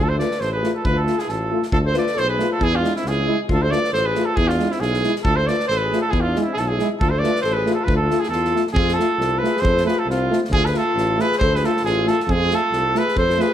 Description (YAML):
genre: balkan folk, Balkan brass band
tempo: 136 BPM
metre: 2/4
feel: swing 55% on 16ths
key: D dorian sharp4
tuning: A4 = 440 Hz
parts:
  - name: clear trumpet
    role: melody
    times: 0.0-13.5 s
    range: E4 to D5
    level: -21 LUFS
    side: right 3 dB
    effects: none
  - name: warm alto saxophone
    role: second line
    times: 0.0-13.5 s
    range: C4 to B4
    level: -26 LUFS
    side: left 6 dB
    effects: tape echo
  - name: warm tuba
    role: bass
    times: 0.0-13.4 s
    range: A1 to F2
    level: -24 LUFS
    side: equal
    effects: none
  - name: clear French horn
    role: accompaniment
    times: 0.2-13.5 s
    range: E4 to F4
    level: -28 LUFS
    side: left 7 dB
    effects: none
  - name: warm euphonium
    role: accompaniment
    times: 0.2-13.5 s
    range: G#3 to A3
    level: -28 LUFS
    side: right 6 dB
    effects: none
  - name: natural country drum kit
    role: percussion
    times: 0.2-13.5 s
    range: kick drum, snare drum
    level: -26 LUFS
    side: equal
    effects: none
room: moderate recital hall reverb, RT60 1.7 s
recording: none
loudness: -17 LUFS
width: side -10 dB against mid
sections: 0.0-1.7 A section; 1.7-8.8 A section; 8.8-13.5 B section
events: none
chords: 0.0 Dm; 2.6 E; 3.5 Dm; 4.4 E; 5.2 Dm; 6.1 E; 7.0 Dm; 8.8 F; 10.5 Dm; 12.3 F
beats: 0.41 | 0.85 1.29 | 1.73 2.17 | 2.61 3.05 | 3.49 3.93 | 4.37 4.81 | 5.25 5.69 | 6.13 6.57 | 7.01 7.45 | 7.89 8.33 | 8.77 9.21 | 9.65 10.09 | 10.53 10.96 | 11.40 11.84 | 12.28 12.72 | 13.16